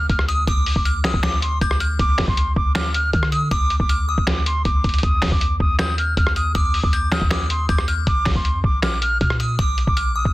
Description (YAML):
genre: hip hop, trap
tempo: 158 BPM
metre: 4/4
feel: half-time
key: D phrygian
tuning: A4 = 445 Hz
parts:
  - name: silver concert flute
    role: melody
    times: 0.0-10.3 s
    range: C6 to F6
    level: -24 LUFS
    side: right 1 dB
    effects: low-pass filter, digital delay
  - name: delicate synth tine bell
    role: second line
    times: 0.0-10.3 s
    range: D6 to G6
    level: -29 LUFS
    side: left 3 dB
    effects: chorus, digital delay
  - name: clean 808-style bass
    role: bass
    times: 0.0-10.3 s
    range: Bb1 to D3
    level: -22 LUFS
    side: equal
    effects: none
  - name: impact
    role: sound effects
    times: 0.0-0.5 s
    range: none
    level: -46 LUFS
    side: equal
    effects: none
  - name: lo-fi sampler-style drum kit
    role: drums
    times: 0.1-10.3 s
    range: finger snaps, hi-hat, kick drum, rim click, snare drum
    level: -20 LUFS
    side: equal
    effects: soft clipping on snare
room: little or no reverb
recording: dense, heavily limited modern master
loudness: -17 LUFS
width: side -18 dB against mid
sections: 0.0-10.3 A section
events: impact 0.0-0.5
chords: 0.0 Dm; 5.0 Eb; 8.1 Bb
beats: 0.10 | 0.47 0.85 1.24 1.61 | 1.99 2.37 2.75 3.13 | 3.51 3.89 4.27 4.65 | 5.03 5.41 5.79 6.17 | 6.55 6.93 7.31 7.69 | 8.07 8.45 8.83 9.21 | 9.59 9.97